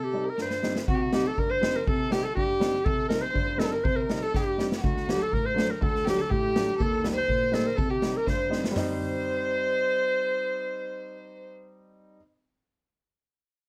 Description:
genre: klezmer.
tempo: 122 BPM.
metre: 2/4.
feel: straight.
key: C dorian sharp4.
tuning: A4 = 435 Hz.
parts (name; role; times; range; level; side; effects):
warm clarinet; melody; 0.0-11.5 s; F#4 to C5; -31 LUFS; equal; none.
rich violin; second line; 0.0-11.5 s; F#4 to C5; -35 LUFS; equal; none.
dark upright piano; accompaniment; 0.0-12.2 s; D2 to Eb4; -34 LUFS; equal; none.
street-band drum kit; drums; 0.4-8.9 s; hi-hat, kick drum, snare drum, toms; -32 LUFS; equal; none.
room: moderate small room reverb, RT60 0.6 s.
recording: dark, warm production.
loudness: -27 LUFS.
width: mono.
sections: 0.9-8.8 A section; 8.8-10.7 B section.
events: break 0.0-0.9; drum fill 0.4-0.9, 4.3-4.8, 8.3-8.8.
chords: 0.0 Cm; 4.8 D; 6.8 Eb; 7.8 Cm.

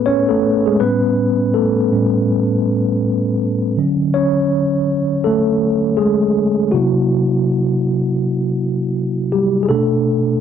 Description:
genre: R&B.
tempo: 81 BPM.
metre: 4/4.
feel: swing 61% on 16ths.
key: unclear.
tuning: A4 = 440 Hz.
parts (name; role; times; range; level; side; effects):
mellow tine electric piano; solo; 0.0-10.4 s; A2 to C#5; -14 LUFS; equal; medium stereo tremolo.
room: moderate booth ambience, RT60 0.2 s.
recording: dry, close 1970s-style studio recording.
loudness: -14 LUFS.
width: side -8 dB against mid.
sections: 0.0-10.4 A section.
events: tine electric piano solo 0.0-10.4.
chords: 0.0 Amaj9; 0.8 A7; 3.8 Dmaj7; 6.7 C7#11; 9.7 Bm7.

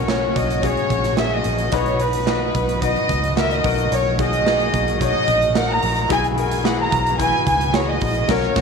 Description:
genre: piano-driven pop.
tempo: 110 BPM.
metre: 4/4.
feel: straight.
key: unclear.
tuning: A4 = 436 Hz.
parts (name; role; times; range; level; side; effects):
warm studio violin section; melody; 0.0-8.6 s; B4 to A#5; -21 LUFS; right 1 dB; slapback echo.
bright upright piano; accompaniment; 0.0-8.6 s; B2 to C#5; -23 LUFS; left 11 dB; none.
warm studio string section; sustained chords; 0.0-8.6 s; C#3 to F#4; -31 LUFS; right 12 dB; none.
vintage muted fingered electric bass; bass; 0.0-8.6 s; A#1 to C#2; -24 LUFS; equal; none.
huge arena drum kit; drums; 0.1-8.6 s; crash cymbal, handclaps, hi-hat, kick drum, snare drum; -24 LUFS; right 6 dB; none.
room: moderate echo chamber reverb, RT60 1.4 s, small room ambience.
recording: 1960s-style stereo with parts hard left and right.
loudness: -17 LUFS.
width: side -5 dB against mid.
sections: 0.0-8.6 A section.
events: band accent 8.3-8.6.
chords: 0.0 F#/B; 1.7 B; 3.6 D#m/B; 6.1 Eadd9/B.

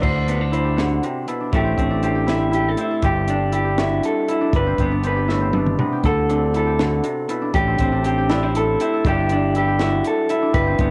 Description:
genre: math rock and midwest emo.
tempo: 80 BPM (dotted quarters).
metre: 6/8.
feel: straight.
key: unclear.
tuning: A4 = 439 Hz.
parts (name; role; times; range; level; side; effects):
electric guitar through a small old amp; accompaniment; 0.0-10.9 s; G2 to C5; -23 LUFS; equal; cassette tape.
concert harp; arpeggios; 0.0-10.9 s; B3 to A4; -27 LUFS; equal; cassette tape.
fingered electric bass; bass; 0.0-10.9 s; G1 to D2; -25 LUFS; equal; none.
compact cocktail drum kit; drums; 0.0-10.9 s; crash cymbal, hi-hat, kick drum, snare drum, toms; -26 LUFS; equal; none.
room: light reverb.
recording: home recording on cassette.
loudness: -20 LUFS.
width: mono.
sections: 0.0-10.9 A section.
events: drum fill 5.3-6.0.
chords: 0.0 D7; 1.5 Am7; 3.0 Em7/G; 4.5 G6; 6.0 D7; 7.5 Am7; 9.0 Em7/G.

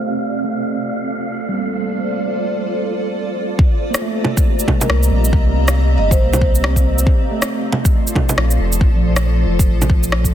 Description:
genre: future garage.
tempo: 138 BPM.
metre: 4/4.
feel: swing 60% on 16ths.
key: C dorian.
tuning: A4 = 440 Hz.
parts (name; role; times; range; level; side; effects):
tine electric piano; accompaniment; 0.0-10.3 s; F3 to C5; -24 LUFS; right 4 dB; medium stereo tremolo, sidechain pumping, tape echo.
granular cloud pad; sustained chords; 0.0-10.3 s; F3 to Bb5; -23 LUFS; left 1 dB; built-in reverb, sidechain pumping.
wind-like tuned noise texture; texture; 0.0-3.6 s; F5; -31 LUFS; right 3 dB; built-in reverb.
electronic kick drum; drums; 3.6-10.3 s; none; -15 LUFS; equal; none.
electronic rim click, shaker and bongos; drums; 3.9-10.3 s; none; -20 LUFS; right 1 dB; low-pass filter on perc, low-pass filter on snare.
marimba with soft mallets; melody; 4.8-6.9 s; Bb4 to Eb5; -26 LUFS; right 1 dB; tape echo.
warm sub bass; bass; 4.9-10.3 s; F1 to C2; -16 LUFS; equal; tube saturation, sidechain pumping.
room: light reverb, digital ambience.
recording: dense, heavily limited modern master, low-pass filter.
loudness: -14 LUFS.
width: side -11 dB against mid.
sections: 0.0-3.6 A section; 3.6-10.3 B section.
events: filter sweep on ambient pad 0.0-3.6; filter sweep 0.0-3.6.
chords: 0.1 Bbmaj9; 3.6 Cm11; 7.1 Bbmaj9.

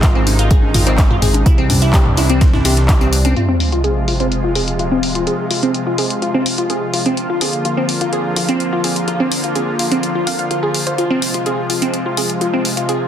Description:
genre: progressive house.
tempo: 126 BPM.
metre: 4/4.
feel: straight.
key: F dorian.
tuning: A4 = 440 Hz.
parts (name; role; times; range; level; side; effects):
supersaw pad; sustained chords; 0.0-13.1 s; C3 to F4; -21 LUFS; equal; sidechain pumping.
glassy wavetable pluck; arpeggios; 0.0-12.9 s; C4 to F5; -18 LUFS; equal; chorus, sidechain pumping, tape echo.
fat analog bass; bass; 0.0-3.3 s; Ab1 to C2; -16 LUFS; equal; sidechain pumping.
breakbeat sampler-style drum kit; drums; 0.0-3.4 s; hi-hat, snare drum, tambourine; -28 LUFS; left 1 dB; high-pass filter on perc, high-pass filter on snare, high-pass filter on hats.
deep house drum kit; drums; 0.0-13.0 s; handclaps, hi-hat; -21 LUFS; left 1 dB; low-pass filter on hats, low-pass filter on snare, low-pass filter on room.
electronic kick drum; drums; 0.0-3.0 s; none; -12 LUFS; equal; none.
electronic congas and toms; percussion; 0.3-3.3 s; none; -21 LUFS; left 1 dB; sidechain pumping on perc, sidechain pumping on toms.
sub drop; sound effects; 3.4-5.3 s; none; -20 LUFS; equal; none.
room: moderate digital room reverb, RT60 1.1 s.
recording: dense, heavily limited modern master.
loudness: -13 LUFS.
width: side -9 dB against mid.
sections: 0.0-3.4 A section; 3.4-13.1 B section.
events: impact 3.4-5.3; filter sweep on synth arpeggio sound 3.4-13.1.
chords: 0.0 Ab; 1.5 Cadd9; 3.4 Fm; 7.2 Bb; 11.0 Fm.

